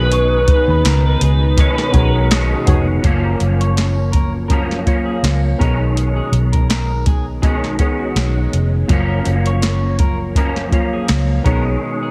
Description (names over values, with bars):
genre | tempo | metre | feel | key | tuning
indie pop, bedroom pop | 82 BPM | 4/4 | swing 55% on 16ths | F# major | A4 = 440 Hz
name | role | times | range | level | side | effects
overdriven slide guitar | melody | 0.0-2.3 s | B4 | -21 LUFS | equal | lush chorus, analog delay
electric guitar at the edge of break-up | accompaniment | 0.0-12.1 s | F#2 to C#4 | -26 LUFS | equal | ensemble chorus, warbly pitch drift
mellow tine electric piano | accompaniment | 0.0-12.1 s | F#3 to C#5 | -26 LUFS | equal | cassette tape
phased analog pad | sustained chords | 0.3-3.0 s | G#3 to D#4 | -30 LUFS | equal | phaser, chorus
vintage muted fingered electric bass | bass | 0.0-11.7 s | E#1 to D#2 | -20 LUFS | equal | none
electric guitar through a small old amp | second line | 0.1-12.1 s | F#4 to C#5 | -31 LUFS | equal | subtle chorus, analog delay
soft vintage rhythm box | drums | 0.1-11.6 s | hi-hat, kick drum, snare drum | -19 LUFS | equal | none
room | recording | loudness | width
digital ambience | heavily compressed radio sound, multiband compression | -16 LUFS | mono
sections
0.0-3.0 A section; 3.0-12.1 B section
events
break 11.8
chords
0.0 B69; 3.0 F#maj7; 5.6 B69; 8.9 F#maj7; 11.5 B69